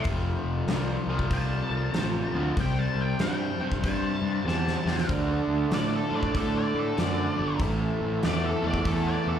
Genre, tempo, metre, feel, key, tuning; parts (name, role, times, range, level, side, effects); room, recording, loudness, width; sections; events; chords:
blues rock power trio and southern rock; 96 BPM; 4/4; swing 63% on 8ths; A4 = 440 Hz
octave-fuzz lead guitar; melody; 0.0-9.4 s; A4 to A5; -33 LUFS; left 3 dB; wah, distortion, slapback echo
overdriven electric guitar; riff; 0.0-9.4 s; F2 to D4; -30 LUFS; right 1 dB
big rock drum kit; drums; 0.0-9.0 s; hi-hat, kick drum, snare drum; -31 LUFS; equal
fuzz picked electric bass; bass; 0.1-9.4 s; F1 to A2; -28 LUFS; equal; overdrive
overdriven tonewheel organ; sustained chords; 5.1-9.4 s; A3 to Bb4; -35 LUFS; right 2 dB; chorus vibrato, wide subtle chorus
light reverb; live gig heard through the venue's PA, club reverb; -24 LUFS; side -9 dB against mid
0.0-9.4 A section
drum fill 4.5-5.1
0.1 F; 2.6 C; 5.1 D; 7.6 Am